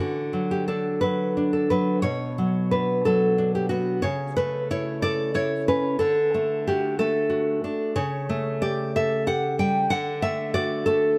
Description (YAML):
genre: romantic piece for solo classical guitar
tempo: 61 BPM (dotted quarters)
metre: 6/8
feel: rubato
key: D major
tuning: A4 = 440 Hz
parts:
  - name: nylon-string guitar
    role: solo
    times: 0.0-11.2 s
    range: B2 to G5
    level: -24 LUFS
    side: equal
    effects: none
room: moderate plate reverb, RT60 2.9 s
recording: heard from further back in the room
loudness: -24 LUFS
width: mono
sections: 0.0-11.2 A section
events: none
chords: 0.0 D; 2.0 Bm; 4.0 A/C#; 6.0 D; 7.9 A7/C#; 9.9 D